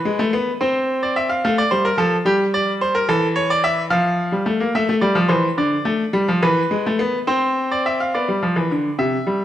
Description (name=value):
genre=classical, baroque-style two-part invention for grand piano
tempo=72 BPM (dotted quarters)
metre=6/8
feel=straight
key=unclear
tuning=A4 = 440 Hz
part: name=bright baby grand piano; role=solo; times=0.0-9.4 s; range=C3 to F5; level=-17 LUFS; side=equal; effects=none
room=moderate recital hall reverb, RT60 1.5 s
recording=none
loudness=-17 LUFS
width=side -12 dB against mid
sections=0.0-8.1 A section; 8.1-9.4 B section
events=none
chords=0.0 E (rootless); 0.6 Cadd9; 1.4 Dm; 2.3 Gm; 3.1 A/E; 3.9 Fadd9; 4.8 Am; 5.6 Dm; 6.4 E; 7.3 Cadd9; 8.1 G7